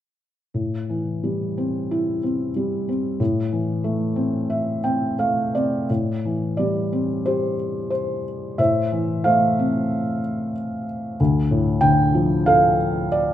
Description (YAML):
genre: classical, lyrical solo piano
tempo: 90 BPM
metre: 4/4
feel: uneven beats, rubato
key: A minor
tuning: A4 = 442 Hz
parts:
  - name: felt-muted upright piano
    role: solo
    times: 0.5-13.3 s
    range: D2 to G5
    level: -19 LUFS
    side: equal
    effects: none
room: moderate recital hall reverb, RT60 1.3 s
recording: recorded in a church or concert hall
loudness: -19 LUFS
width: side -11 dB against mid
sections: 0.5-5.9 A section; 5.9-13.3 B section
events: felt piano fill 4.5-5.9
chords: 0.5 Am7; 3.2 Amadd11; 5.9 Am7; 8.6 Fmaj7/A; 11.2 Dm